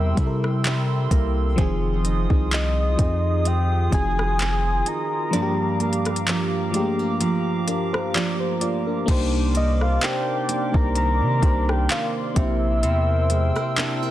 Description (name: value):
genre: contemporary R&B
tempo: 64 BPM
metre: 4/4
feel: swing 54% on 16ths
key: C minor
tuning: A4 = 437 Hz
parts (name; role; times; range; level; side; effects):
- soft octave-layered synth lead; melody; 0.0-14.1 s; Eb5 to Bb5; -27 LUFS; left 2 dB; chorus, digital delay
- mellow FM electric piano; accompaniment; 0.0-14.1 s; Eb3 to D5; -27 LUFS; left 2 dB; chorus
- hollow soft pad; sustained chords; 0.0-14.1 s; F4 to E6; -30 LUFS; right 1 dB; chorus, sidechain pumping
- nylon-string guitar; arpeggios; 0.0-14.1 s; G2 to Ab4; -28 LUFS; right 4 dB; digital delay
- long sustained 808-style bass; bass; 0.0-13.5 s; F1 to C3; -22 LUFS; equal; none
- smooth R&B drum kit; drums; 0.2-14.0 s; crash cymbal, handclaps, hi-hat, kick drum, rim click; -24 LUFS; equal; overdrive, vintage 12-bit sampler grit
- glassy synth bell; texture; 0.6-11.5 s; C5 to E5; -39 LUFS; right 3 dB; chorus, tremolo, digital delay
room: little or no reverb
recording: dense, heavily limited modern master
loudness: -19 LUFS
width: side -13 dB against mid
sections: 0.0-9.1 A section; 9.1-14.1 B section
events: kick muted 5.3-9.1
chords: 0.0 C7; 1.6 Fm7; 5.3 Gm7; 9.1 Cm9; 12.4 C7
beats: 0.64 | 1.58 2.52 3.46 4.39 | 5.33 6.27 7.21 8.14 | 9.08 10.02 10.96 11.89 | 12.83 13.77